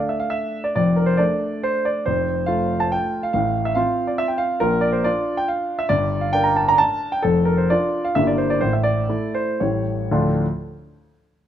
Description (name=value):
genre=classical, romantic triple-time dance for piano with dotted rhythms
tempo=112-152 BPM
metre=3/4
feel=rubato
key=D minor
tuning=A4 = 440 Hz
part: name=warm grand piano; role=solo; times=0.0-10.5 s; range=F1 to Bb5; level=-18 LUFS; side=equal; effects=none
room=light reverb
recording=close, detailed microphones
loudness=-18 LUFS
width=side -10 dB against mid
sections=0.0-10.1 A section; 10.1-11.5 B section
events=slowing down 6.6-10.1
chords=0.0 D5; 0.8 Dm/F; 2.1 F; 3.4 F/A; 4.6 Bb; 5.9 Gm; 7.2 Dm/F; 8.2 Edim/G; 8.6 Asus4; 9.6 A7; 10.1 Dm